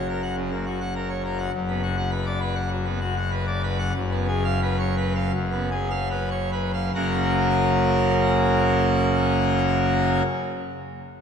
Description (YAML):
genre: classical, organ toccata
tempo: 70-104 BPM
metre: 4/4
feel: straight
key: F# major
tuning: A4 = 437 Hz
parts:
  - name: pipe organ, full organ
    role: solo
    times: 0.0-10.2 s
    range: F#1 to F#5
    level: -21 LUFS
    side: equal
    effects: none
room: wet church reverb, RT60 3.2 s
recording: none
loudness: -21 LUFS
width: side -7 dB against mid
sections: 0.0-1.5 A section; 1.5-6.9 B section; 6.9-10.4 C section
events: slowing down 0.4-6.9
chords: 0.0 F#; 1.5 Bm/F#; 4.0 C#7/F#; 6.9 F#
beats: 0.37 0.95 | 1.53 2.12 2.71 3.32 | 3.95 4.62 5.33 6.10 | 6.94 7.80 8.65 9.51